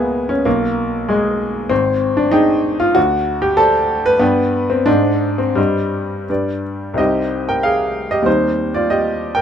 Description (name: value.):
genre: classical, romantic character piece for solo piano.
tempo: 83-100 BPM.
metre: 2/4.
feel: rubato.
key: C minor.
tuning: A4 = 440 Hz.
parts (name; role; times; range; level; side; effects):
clear baby grand piano; solo; 0.0-9.4 s; Ab1 to A5; -14 LUFS; equal; none.
room: little or no reverb.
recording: close, detailed microphones.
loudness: -14 LUFS.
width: side -8 dB against mid.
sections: 0.0-7.0 A section; 7.0-9.4 B section.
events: none.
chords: 0.5 G#m/B; 1.7 Ab5; 3.0 D5; 4.2 G; 4.9 Ab; 5.6 Cm/G; 6.3 G; 7.0 Cm; 8.3 Cm/Eb.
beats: | 0.46 1.08 | 1.71 2.33 | 2.96 3.59 | 4.21 4.87 | 5.57 6.29 | 6.98 7.63 | 8.26 8.89.